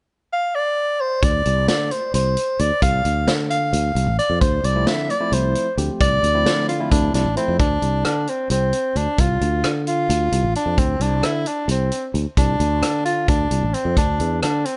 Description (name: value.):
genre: progressive instrumental, band music in an uneven meter.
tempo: 264 BPM (eighths).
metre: 7/8.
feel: straight.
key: D minor.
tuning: A4 = 440 Hz.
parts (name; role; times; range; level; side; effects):
mellow soprano saxophone; melody; 0.3-14.8 s; C4 to F5; -23 LUFS; equal; none.
sustaining fretless electric bass; bass; 1.2-14.6 s; A1 to D3; -24 LUFS; equal; none.
vintage drum kit; drums; 1.2-14.8 s; hi-hat, kick drum, rim click, snare drum; -25 LUFS; equal; none.
barky tine electric piano; accompaniment; 4.8-7.6 s; F3 to G4; -29 LUFS; equal; none.
room: light reverb.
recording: nothing above 10.9 kHz.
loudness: -20 LUFS.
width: mono.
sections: 0.0-1.2 A section; 1.2-7.6 B section; 7.6-14.8 C section.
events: none.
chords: 0.0 N.C.; 1.2 Dm7; 14.0 Dsus2.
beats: 0.08 0.31 0.54 0.77 1.00 | 1.23 1.46 1.68 1.91 2.14 2.37 2.60 | 2.82 3.05 3.28 3.51 3.73 3.96 4.19 | 4.42 4.64 4.87 5.10 5.33 5.55 5.78 | 6.00 6.23 6.46 6.69 6.91 7.14 7.37 | 7.59 7.82 8.05 8.28 8.50 8.73 8.96 | 9.18 9.41 9.64 9.87 10.09 10.32 10.55 | 10.78 11.00 11.23 11.46 11.69 11.92 12.14 | 12.37 12.60 12.83 13.06 13.28 13.51 13.74 | 13.97 14.20 14.43 14.65.